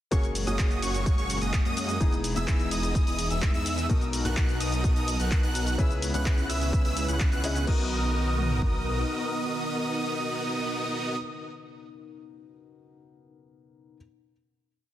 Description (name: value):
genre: EDM, festival progressive house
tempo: 127 BPM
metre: 4/4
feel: straight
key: B major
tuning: A4 = 440 Hz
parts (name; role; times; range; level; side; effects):
- felt-muted upright piano; accompaniment; 0.1-14.0 s; B2 to D#5; -36 LUFS; left 4 dB; sidechain pumping, digital delay
- lush unison pad; sustained chords; 0.1-11.2 s; A#2 to A#4; -36 LUFS; right 1 dB; chorus, vintage 12-bit sampler grit, sidechain pumping
- wide unison lead; arpeggios; 0.1-11.2 s; C#6 to F#6; -34 LUFS; right 1 dB; lush chorus, sidechain pumping, digital delay
- dense compressed supersaw; riff; 0.1-11.2 s; A#3 to F#5; -34 LUFS; right 1 dB; sidechain pumping, digital delay
- wide detuned saw bass; bass; 0.1-9.1 s; E1 to F#2; -30 LUFS; equal; chorus, sidechain pumping
- big-room dance drum kit; drums; 0.1-7.8 s; crash cymbal, handclaps, hi-hat, ride cymbal, shaker; -34 LUFS; left 1 dB; none
- house drum kit; drums; 0.1-8.7 s; kick drum, toms; -25 LUFS; equal; none
room: little or no reverb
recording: dense, heavily limited modern master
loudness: -24 LUFS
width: side -13 dB against mid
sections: 0.1-7.7 drop; 7.7-11.5 final chord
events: drop 0.1-7.7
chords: 0.1 F#add9; 2.0 Emaj7; 3.9 Bmaj7; 5.8 C#m7; 7.7 Bmaj7